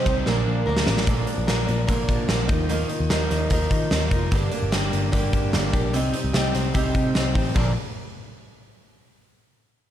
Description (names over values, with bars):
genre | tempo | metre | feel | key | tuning
jangly indie pop | 148 BPM | 4/4 | straight | Bb major | A4 = 440 Hz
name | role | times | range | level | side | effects
warm velvety synth lead | melody | 0.0-0.7 s | Bb4 to C5 | -29 LUFS | right 4 dB | chorus, tape echo
picked twelve-string acoustic guitar | accompaniment | 0.0-7.7 s | G2 to Eb4 | -27 LUFS | right 4 dB | none
direct-recorded clean electric guitar | arpeggios | 0.0-7.7 s | G2 to Bb4 | -30 LUFS | left 6 dB | tape echo
vintage muted picked electric bass | bass | 0.1-7.7 s | F1 to Eb3 | -25 LUFS | equal | none
big rock drum kit | drums | 0.1-7.7 s | crash cymbal, hi-hat, kick drum, ride cymbal, snare drum | -24 LUFS | equal | none
room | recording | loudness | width
light reverb, studio ambience | dark, warm production | -20 LUFS | side -11 dB against mid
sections
0.0-1.1 A section; 1.1-7.6 B section; 7.6-9.2 C section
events
drum fill 0.3-1.1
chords
0.3 Bb; 2.5 Ebsus2; 4.3 Gm; 5.9 Cm; 7.6 Bb